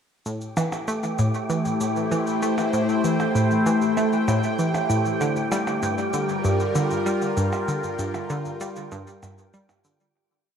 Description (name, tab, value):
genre	ambient, sequencer-driven space music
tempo	97 BPM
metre	4/4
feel	straight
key	A phrygian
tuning	A4 = 439 Hz
part	evolving wavetable pad	sustained chords	1.1-10.2 s	G3 to G5	-24 LUFS	left 1 dB	phaser, built-in reverb
part	analog pluck	riff	0.3-10.1 s	G2 to A3	-25 LUFS	equal	chorus, tape echo
part	cabasa and percussion blips	percussion	0.3-10.1 s	none	-34 LUFS	right 1 dB	tape echo
part	wind-like tuned noise texture	texture	0.5-10.2 s	G4 to G5	-31 LUFS	right 1 dB	built-in reverb
room	wet plate reverb, RT60 2.8 s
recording	echo-heavy mix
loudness	-21 LUFS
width	side -7 dB against mid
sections	0.3-10.2 A section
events	fade-out 6.9-10.2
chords	0.3 Am7; 5.2 Gm7